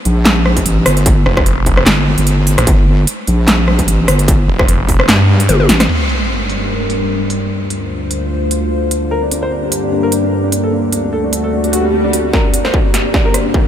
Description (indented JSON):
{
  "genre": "heavy wobble dubstep",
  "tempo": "149 BPM",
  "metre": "4/4",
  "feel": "swing 55% on 16ths, half-time",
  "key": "G minor",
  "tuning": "A4 = 438 Hz",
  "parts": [
    { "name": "wobble bass", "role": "bass", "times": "0.1-5.9 s", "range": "G1 to Bb1", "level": "-12 LUFS", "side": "equal", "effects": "chorus, overdrive" },
    { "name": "big-room dance drum kit", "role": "drums", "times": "0.1-13.4 s", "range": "crash cymbal, handclaps, hi-hat, rim click, snare drum, toms", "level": "-16 LUFS", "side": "equal", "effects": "overdrive, high-pass filter on hats, low-pass filter on hats, high-pass filter on snare, low-pass filter on snare, high-pass filter on toms, low-pass filter on toms, high-pass filter on cymbals, low-pass filter on cymbals, high-pass filter on room, low-pass filter on room" },
    { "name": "electronic kick drum", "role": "drums", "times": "0.6-5.0, 12.3-13.6 s", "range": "none", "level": "-14 LUFS", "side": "equal", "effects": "distortion" },
    { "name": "snarling distorted saw bass", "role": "bass", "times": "1.3-5.5 s", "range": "F1 to G2", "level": "-13 LUFS", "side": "equal", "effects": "distortion, overdrive" },
    { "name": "evolving wavetable pad", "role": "sustained chords", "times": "6.4-13.7 s", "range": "D2 to D5", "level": "-16 LUFS", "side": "left 1 dB", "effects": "chorus, built-in reverb, sidechain pumping" },
    { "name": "sub drop, swell and riser", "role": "sound effects", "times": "5.9-7.5, 11.7-13.7 s", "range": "none", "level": "-21 LUFS", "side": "right 1 dB", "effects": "none" },
    { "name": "dark grand piano", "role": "melody", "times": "9.1-13.7 s", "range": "D4 to C5", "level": "-19 LUFS", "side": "equal", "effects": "diffuse ambient delay" }
  ],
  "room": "moderate huge ambient reverb, RT60 8.0 s",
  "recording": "dreamy mix soaked in reverb",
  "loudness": "-11 LUFS",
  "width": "side -10 dB against mid",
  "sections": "0.0-5.9 A section; 5.9-12.3 B section; 12.3-13.7 C section",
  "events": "drop 0.0-5.9; kick drops out 5.1-5.9; drum fill 5.5-5.9, 12.3-13.7; band accent 5.8; impact 5.9-7.5; filter sweep on drum 5.9-12.3; filter sweep on ambient pad 5.9-12.3, 12.3-13.7; swell 11.7-12.3; build-up 12.3-13.7",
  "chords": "0.0 G5; 5.9 Gm; 7.5 Dm7; 9.1 Gm; 10.7 D; 12.3 Gm"
}